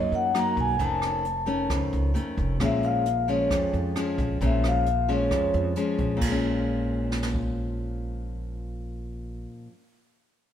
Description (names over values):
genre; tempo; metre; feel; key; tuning
bossa nova; 133 BPM; 4/4; straight; Bb minor; A4 = 443 Hz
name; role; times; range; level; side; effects
vibraphone with soft mallets; melody; 0.0-5.5 s; Db5 to A#5; -27 LUFS; left 2 dB; none
nylon-string guitar; accompaniment; 0.0-9.8 s; F2 to D#4; -28 LUFS; left 2 dB; none
upright bass; bass; 0.0-9.4 s; F1 to F#2; -29 LUFS; right 1 dB; none
jazz brush drum kit; drums; 0.1-7.4 s; crash cymbal, hi-hat, kick drum, rim click, snare drum; -32 LUFS; equal; none
room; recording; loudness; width
moderate plate reverb, RT60 1.9 s; heard from further back in the room; -23 LUFS; side -10 dB against mid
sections
0.0-6.2 A section; 6.2-9.8 B section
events
vibraphone solo 0.0-6.2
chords
0.0 Bmaj7; 0.8 Faug7; 2.6 Bbm7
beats
0.34 | 0.80 1.25 1.70 2.15 | 2.60 3.05 3.50 3.96 | 4.41 4.86 5.31 5.76 | 6.21 6.66 7.12 7.57 | 8.02 8.47 8.92 9.37